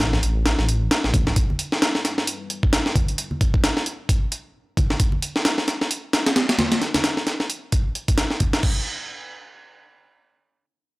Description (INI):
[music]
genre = breakbeat, breaks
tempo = 132 BPM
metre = 4/4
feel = swing 57% on 16ths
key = unclear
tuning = A4 = 440 Hz
[part]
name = dark analog pad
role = sustained chords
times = 0.0-5.0 s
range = G3 to C5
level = -43 LUFS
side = left 2 dB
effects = none
[part]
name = detuned saw bass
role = bass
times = 0.0-1.3 s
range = A1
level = -22 LUFS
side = equal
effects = none
[part]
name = breakbeat sampler-style drum kit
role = drums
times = 0.0-8.8 s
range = crash cymbal, hi-hat, kick drum, snare drum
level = -20 LUFS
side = equal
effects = studio reverb
[part]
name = congas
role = percussion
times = 0.1-8.5 s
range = none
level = -29 LUFS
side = equal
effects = none
[sound]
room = digital ambience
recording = dry, gritty hardware recording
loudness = -19 LUFS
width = side -22 dB against mid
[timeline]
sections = 0.0-8.6 A section; 8.6-11.0 B section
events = filter sweep on detuned saw bass 0.0-1.4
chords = 0.0 Am7; 1.4 G6; 8.6 N.C.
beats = 0.00 0.45 0.91 | 1.36 1.82 2.27 2.73 | 3.18 3.63 4.09 4.54 | 5.00 5.45 5.91 6.36 | 6.82 7.27 7.73 8.18 | 8.63